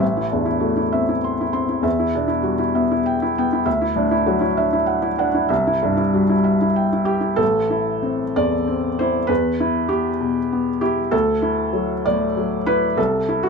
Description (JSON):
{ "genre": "neoclassical minimalist piano", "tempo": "65 BPM (dotted quarters)", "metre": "6/8", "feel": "rubato", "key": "A dorian", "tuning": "A4 = 440 Hz", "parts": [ { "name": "felt-muted upright piano", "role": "solo", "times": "0.0-13.5 s", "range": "A1 to C6", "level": "-17 LUFS", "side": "equal", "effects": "none" } ], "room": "moderate studio reverb, RT60 0.5 s", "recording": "minimal, uncompressed stereo recording", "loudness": "-17 LUFS", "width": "side -5 dB against mid", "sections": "0.0-7.4 A section; 7.4-13.5 B section", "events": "none", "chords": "0.0 Am; 1.9 Em; 3.7 Dadd9; 5.5 C; 7.4 Am; 9.3 Em; 11.1 Dadd9; 13.0 C", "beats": "| 0.01 0.94 | 1.85 2.75 | 3.66 4.57 | 5.50 6.45 | 7.41 8.37 | 9.30 10.21 | 11.13 12.07 | 12.98" }